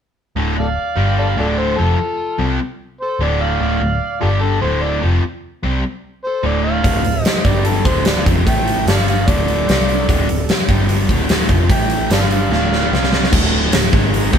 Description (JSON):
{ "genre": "blues rock power trio and southern rock", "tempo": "148 BPM", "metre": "4/4", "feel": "straight", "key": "D minor", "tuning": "A4 = 438 Hz", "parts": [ { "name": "overdriven electric guitar", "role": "riff", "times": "0.4-14.4 s", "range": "D2 to C4", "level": "-20 LUFS", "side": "equal", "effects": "none" }, { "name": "vintage muted picked electric bass", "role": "bass", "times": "0.4-14.4 s", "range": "D1 to C2", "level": "-19 LUFS", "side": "equal", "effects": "none" }, { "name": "overdriven harmonica", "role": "melody", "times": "0.6-13.3 s", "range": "F4 to G5", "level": "-21 LUFS", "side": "left 1 dB", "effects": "none" }, { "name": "dark smooth lead guitar", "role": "second line", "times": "0.6-13.3 s", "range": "D4 to E5", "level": "-29 LUFS", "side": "right 4 dB", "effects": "overdrive" }, { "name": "huge arena drum kit", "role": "drums", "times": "6.8-14.4 s", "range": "crash cymbal, hi-hat, kick drum, snare drum", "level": "-16 LUFS", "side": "equal", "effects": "none" } ], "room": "moderate studio reverb, RT60 0.9 s", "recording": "band playing live in one room", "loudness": "-14 LUFS", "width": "side -8 dB against mid", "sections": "0.4-13.3 A section; 13.3-14.4 B section", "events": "drum fill 12.5-13.3", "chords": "0.4 Dm; 1.0 G5; 1.4 Dm; 4.2 G5; 4.6 Dm; 7.5 G5; 7.9 Dm; 8.5 A5; 8.9 G5; 9.3 D5; 9.7 C5; 10.1 D5; 10.7 G5; 11.1 Dm; 11.7 A5; 12.1 G5; 12.5 Dm; 12.9 C5; 13.3 D5; 13.9 G#5" }